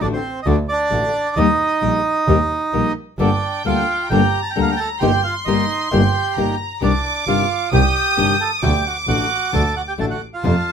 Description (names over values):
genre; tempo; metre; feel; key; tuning
tango; 132 BPM; 4/4; rubato; unclear; A4 = 440 Hz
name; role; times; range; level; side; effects
bandoneon; melody; 0.0-10.7 s; C4 to A5; -20 LUFS; right 3 dB; none
nylon-string guitar; accompaniment; 0.0-10.5 s; C3 to A4; -20 LUFS; left 7 dB; none
clear double bass; bass; 0.0-10.6 s; G1 to F2; -21 LUFS; right 2 dB; none
clear studio violin section; second line; 3.2-10.7 s; G5 to Eb6; -23 LUFS; right 1 dB; none
room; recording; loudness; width
light reverb; minimal, uncompressed stereo recording; -16 LUFS; side -7 dB against mid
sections
0.0-10.7 A section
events
none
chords
0.0 D; 1.4 Eb; 3.2 Gmadd9; 5.0 Eb/G; 6.8 Cmadd9; 8.6 D